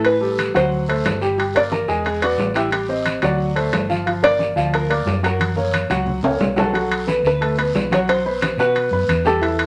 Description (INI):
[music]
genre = Afro-Cuban jazz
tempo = 179 BPM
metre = 4/4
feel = straight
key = unclear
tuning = A4 = 440 Hz
[part]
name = open-back banjo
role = melody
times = 0.0-9.7 s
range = E4 to D5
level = -23 LUFS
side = equal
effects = none
[part]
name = warm concert grand piano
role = accompaniment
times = 0.0-9.7 s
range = E3 to F#6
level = -24 LUFS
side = equal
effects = none
[part]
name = hollow-body short-scale fingered electric bass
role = bass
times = 0.0-9.7 s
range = E1 to B2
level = -28 LUFS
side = equal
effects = none
[part]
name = congas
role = percussion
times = 0.0-9.7 s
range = none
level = -31 LUFS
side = equal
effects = none
[part]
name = guiro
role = percussion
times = 0.0-9.7 s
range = none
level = -36 LUFS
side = equal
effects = none
[part]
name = timbales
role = percussion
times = 0.0-9.7 s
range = none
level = -26 LUFS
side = equal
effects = none
[sound]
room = wet studio reverb, RT60 0.6 s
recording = none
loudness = -19 LUFS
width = mono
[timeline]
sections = 0.0-6.7 A section; 6.7-9.7 B section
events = drum fill 5.4-6.7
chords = 0.1 Asus2; 0.7 D7; 1.4 Gm; 2.1 E7; 2.7 Am7b5; 3.4 D7; 4.1 Gm7; 5.4 F#; 6.7 Bm7; 8.1 B5